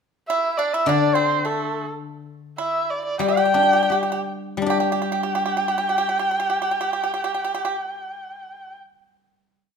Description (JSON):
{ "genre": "chinese traditional", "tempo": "70-107 BPM", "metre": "2/4", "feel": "rubato", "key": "G zhi mode", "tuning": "A4 = 440 Hz", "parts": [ { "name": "dark erhu", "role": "melody", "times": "0.3-8.8 s", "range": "A4 to G5", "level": "-23 LUFS", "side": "right 1 dB", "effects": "none" }, { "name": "pipa", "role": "second line", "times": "0.3-7.8 s", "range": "A3 to G4", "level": "-26 LUFS", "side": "right 5 dB", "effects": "none" }, { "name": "guzheng", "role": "accompaniment", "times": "0.9-9.8 s", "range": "D3 to G4", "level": "-23 LUFS", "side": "left 5 dB", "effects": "none" } ], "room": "moderate recital hall reverb, RT60 1.3 s", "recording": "minimal, uncompressed stereo recording", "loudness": "-19 LUFS", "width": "side -6 dB against mid", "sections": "0.0-4.7 A section; 4.7-8.0 final chord", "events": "slowing down 2.0-4.7", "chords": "none" }